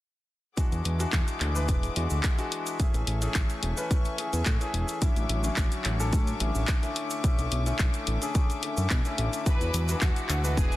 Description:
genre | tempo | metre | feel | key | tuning
nu-disco, nu disco | 108 BPM | 4/4 | straight | unclear | A4 = 444 Hz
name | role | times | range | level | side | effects
bright concert grand piano | accompaniment | 0.6-10.8 s | D3 to B4 | -34 LUFS | left 2 dB | tape echo
rich studio string section | sustained chords | 0.6-10.8 s | A3 to D6 | -37 LUFS | left 4 dB | sidechain pumping
fat analog bass | bass | 0.6-10.8 s | E1 to B2 | -28 LUFS | equal | none
electronic kick drum | drums | 0.6-10.7 s | none | -26 LUFS | equal | none
house drum kit | drums | 0.6-10.8 s | cabasa, handclaps, hi-hat | -33 LUFS | left 1 dB | none
cabasa | percussion | 0.6-10.8 s | none | -41 LUFS | right 2 dB | none
warm symphonic violin section | melody | 9.5-10.8 s | F#4 to B4 | -34 LUFS | equal | none
room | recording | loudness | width
studio ambience | dense, heavily limited modern master | -25 LUFS | side -16 dB against mid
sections
0.6-10.8 A section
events
none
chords
0.6 E9; 2.8 Amaj7; 5.0 Dmaj9/A; 7.0 Bm11; 9.5 E9

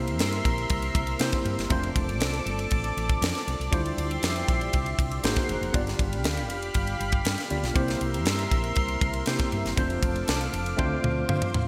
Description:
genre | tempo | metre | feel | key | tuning
polished 1980s jazz-funk pop | 119 BPM | 4/4 | straight | unclear | A4 = 440 Hz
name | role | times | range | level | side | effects
tine electric piano | accompaniment | 0.0-11.7 s | G3 to F5 | -34 LUFS | equal | overdrive, subtle chorus
lush unison pad | sustained chords | 0.0-11.7 s | G4 to D6 | -34 LUFS | equal | chorus
woody fretless electric bass | bass | 0.0-11.6 s | F1 to D3 | -33 LUFS | equal | none
tight funk drum kit | drums | 0.1-11.7 s | kick drum, ride cymbal, snare drum, toms | -30 LUFS | equal | gated reverb
room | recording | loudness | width
moderate lush hall reverb, RT60 1.6 s, small room ambience | bright 1980s-style digital production | -27 LUFS | mono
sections
0.0-11.7 A section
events
drum fill 10.8-11.7; tine electric piano fill 11.0-11.7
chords
0.0 C7; 1.7 F6; 3.7 Dm11; 5.2 G#9; 5.7 G7; 7.8 C7; 9.8 F6; 10.8 Dm7

